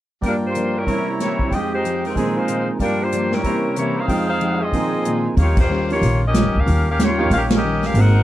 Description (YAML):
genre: jazz, big band swing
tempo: 186 BPM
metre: 4/4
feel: swing 62% on 8ths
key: Eb mixolydian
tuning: A4 = 440 Hz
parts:
  - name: clear concert grand piano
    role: accompaniment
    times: 0.2-8.1 s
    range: F2 to G5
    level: -23 LUFS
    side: right 4 dB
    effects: none
  - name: picked plugged-in steel-string acoustic guitar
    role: accompaniment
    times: 0.2-8.2 s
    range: G2 to G4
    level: -26 LUFS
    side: left 4 dB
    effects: none
  - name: warm trumpet section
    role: stabs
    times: 0.2-7.6 s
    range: C4 to Bb5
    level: -27 LUFS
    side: right 1 dB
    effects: none
  - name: swinging big-band drum kit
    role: drums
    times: 0.2-8.0 s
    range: crash cymbal, hi-hat, kick drum, ride cymbal, snare drum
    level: -22 LUFS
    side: equal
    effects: none
  - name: bright saxophone section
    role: melody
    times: 0.3-8.2 s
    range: F3 to Gb5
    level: -22 LUFS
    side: left 1 dB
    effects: none
  - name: upright bass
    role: bass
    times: 5.4-8.2 s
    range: Ab1 to Eb2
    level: -18 LUFS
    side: equal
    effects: none
room: light reverb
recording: lossy compression artefacts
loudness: -17 LUFS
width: side -14 dB against mid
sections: 0.2-5.4 A section; 5.4-8.2 B section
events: band accent 5.5, 7.5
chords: 0.2 Gm7; 0.9 C7b9; 1.5 Fm9; 2.2 Bb9sus4; 2.8 Gm7; 3.4 C7b9; 4.1 Fm9; 4.7 Bb9sus4; 5.4 Eb9